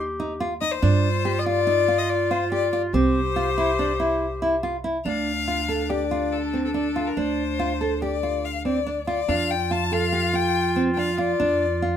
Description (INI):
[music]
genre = contemporary instrumental, chamber music in an uneven meter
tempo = 142 BPM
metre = 5/4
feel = straight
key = unclear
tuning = A4 = 439 Hz
[part]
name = mellow clarinet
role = second line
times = 0.0-12.0 s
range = D4 to G4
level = -27 LUFS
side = equal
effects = none
[part]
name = nylon-string guitar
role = arpeggios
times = 0.0-12.0 s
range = C4 to A4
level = -26 LUFS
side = right 2 dB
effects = none
[part]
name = upright bass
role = bass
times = 0.0-12.0 s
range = C2 to G2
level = -28 LUFS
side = right 2 dB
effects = none
[part]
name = clear violin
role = melody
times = 0.6-12.0 s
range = A4 to A5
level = -26 LUFS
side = left 8 dB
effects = none
[sound]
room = moderate studio ambience, RT60 0.5 s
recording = none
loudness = -21 LUFS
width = side -9 dB against mid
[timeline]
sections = 0.0-5.1 A section; 5.1-12.0 B section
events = none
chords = 0.0 Cm/Eb (rootless); 0.8 G5; 2.9 C; 5.1 Dm; 9.3 F5